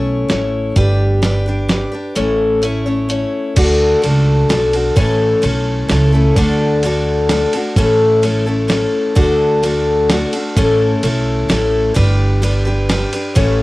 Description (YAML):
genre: honky-tonk and classic country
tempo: 129 BPM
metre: 3/4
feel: straight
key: A mixolydian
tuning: A4 = 439 Hz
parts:
  - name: picked steel-string acoustic guitar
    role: accompaniment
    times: 0.0-13.6 s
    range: A2 to C#5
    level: -15 LUFS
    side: left 2 dB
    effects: cassette tape
  - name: upright bass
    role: bass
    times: 0.0-13.6 s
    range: G1 to D2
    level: -17 LUFS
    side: right 1 dB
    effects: none
  - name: dusty soul sampler-style drum kit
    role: drums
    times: 0.3-13.5 s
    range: crash cymbal, hi-hat, kick drum, ride cymbal, snare drum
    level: -20 LUFS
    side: right 1 dB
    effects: cassette tape
room: light reverb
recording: home recording on cassette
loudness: -12 LUFS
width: side -19 dB against mid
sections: 0.0-3.6 A section; 3.6-13.6 B section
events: kick and snare drop out 2.2-3.6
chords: 0.0 A; 0.8 G; 2.2 A; 3.6 D; 5.0 A; 6.4 D; 7.8 A; 9.2 D; 10.6 A; 12.0 G